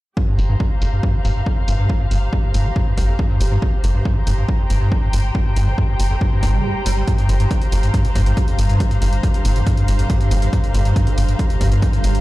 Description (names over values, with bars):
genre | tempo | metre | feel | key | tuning
driving peak-time techno | 139 BPM | 4/4 | straight | G minor | A4 = 440 Hz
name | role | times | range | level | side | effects
overdriven acid bass | riff | 0.2-12.1 s | F2 to G3 | -22 LUFS | equal | ensemble chorus, sidechain pumping, digital delay
electronic kick drum | drums | 0.2-11.9 s | none | -19 LUFS | equal | overdrive
muted studio string section | texture | 0.2-12.2 s | G4 to Bb5 | -27 LUFS | left 2 dB | sidechain pumping
tight sequencer bass | bass | 0.4-12.2 s | G1 | -18 LUFS | equal | sidechain pumping
electronic hi-hat | drums | 0.4-12.2 s | none | -32 LUFS | right 1 dB | overdrive, low-pass filter on hats
swell | sound effects | 6.4-7.1 s | none | -27 LUFS | right 5 dB | none
deep dark ambient pad | drone | 8.1-12.2 s | G2 to D3 | -26 LUFS | equal | chorus, built-in reverb, sidechain pumping
room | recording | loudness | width
light reverb | played on a big sound system in a bare room, large studio reverb | -15 LUFS | side -18 dB against mid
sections
0.2-7.1 A section; 7.1-12.2 B section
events
filter sweep on analog synth bass 0.2-7.1; filter sweep on acid bass 0.2-7.1; swell 6.4-7.1; break 6.6-7.1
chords
0.2 Gm